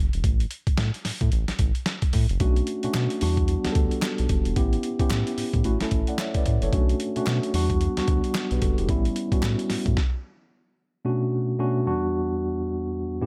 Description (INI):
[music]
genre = R&B, new jack swing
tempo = 111 BPM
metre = 4/4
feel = swing 60% on 16ths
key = unclear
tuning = A4 = 441 Hz
[part]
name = round analog bass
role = bass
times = 0.0-9.9 s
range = E1 to B2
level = -28 LUFS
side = equal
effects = none
[part]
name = boom bap sampler-style drum kit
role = drums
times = 0.1-10.1 s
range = hi-hat, kick drum, snare drum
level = -27 LUFS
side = equal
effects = none
[part]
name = mellow tine electric piano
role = accompaniment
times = 2.4-13.3 s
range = E2 to F#5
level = -28 LUFS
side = equal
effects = none
[part]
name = group handclap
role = percussion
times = 2.9-9.6 s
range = none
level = -41 LUFS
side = equal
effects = none
[sound]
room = digital ambience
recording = none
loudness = -25 LUFS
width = mono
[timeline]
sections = 0.0-11.1 A section; 11.1-13.3 B section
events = stop 10.0-11.1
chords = 0.2 N.C.; 2.4 Bm7; 3.2 Em7; 4.6 A7; 5.6 Bm11; 6.7 Bm7; 7.5 Em7; 8.9 A7; 10.0 N.C.; 11.1 Bm7; 11.9 Em7